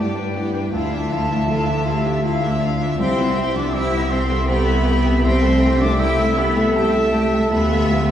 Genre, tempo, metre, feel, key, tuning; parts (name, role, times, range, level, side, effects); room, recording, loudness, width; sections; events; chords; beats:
cinematic; 80 BPM; 3/4; rubato; A4 = 438 Hz
rich studio violin section; melody; 0.0-8.1 s; B4 to G5; -29 LUFS; left 4 dB
clear oboe; second line; 0.0-8.1 s; D5 to E5; -28 LUFS; equal
rich studio violin section; second line; 0.0-8.1 s; E4 to B4; -32 LUFS; left 2 dB
silver concert flute; second line; 0.0-8.1 s; G5 to E6; -27 LUFS; left 1 dB
warm clarinet; second line; 0.0-8.1 s; F4 to G4; -34 LUFS; equal
dark grand piano; accompaniment; 0.0-8.1 s; C2 to E5; -25 LUFS; left 1 dB
rich studio viola section; accompaniment; 0.0-8.1 s; G3 to E4; -28 LUFS; right 1 dB
mellow French horn section; sustained chords; 0.0-8.1 s; D4 to A4; -26 LUFS; equal
rich studio cello section; bass; 0.0-8.1 s; G3 to E4; -23 LUFS; equal
rich studio double bass section; bass; 0.0-8.1 s; C2 to G2; -22 LUFS; right 1 dB
wet scoring stage reverb, RT60 2.0 s; heard from further back in the room, small room ambience; -16 LUFS; side -10 dB against mid
0.0-8.1 A section
0.0 G; 0.7 Dmadd9; 3.0 Cmaj7; 7.5 Dmadd9
| 0.74 1.49 2.25 | 3.00 3.75 4.49 | 5.25 6.00 6.76 | 7.51